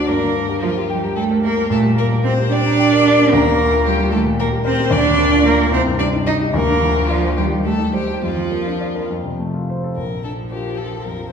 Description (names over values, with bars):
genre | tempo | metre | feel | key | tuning
quick classical-period movement for piano trio | 74 BPM (dotted quarters) | 6/8 | rubato | G minor, Bb major from 3.3 s | A4 = 440 Hz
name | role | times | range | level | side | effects
warm violin | melody | 0.0-11.3 s | F4 to Eb5 | -23 LUFS | left 5 dB | none
dark cello | second line | 0.0-11.3 s | F3 to Eb4 | -18 LUFS | right 3 dB | none
warm grand piano | accompaniment | 0.0-11.3 s | Bb1 to C6 | -19 LUFS | left 2 dB | none
room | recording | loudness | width
wet recital hall reverb, RT60 1.6 s | recorded in a church or concert hall | -15 LUFS | side -7 dB against mid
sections
0.0-10.0 A section; 10.0-11.3 B section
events
none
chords
0.1 Gm; 1.7 Gm/Bb; 3.3 Bb/D; 4.1 Eb; 4.9 Bb/D; 5.7 Cm; 6.5 Bb/D; 7.4 Cm/Eb; 8.2 Bb/F; 9.1 F; 10.0 Bb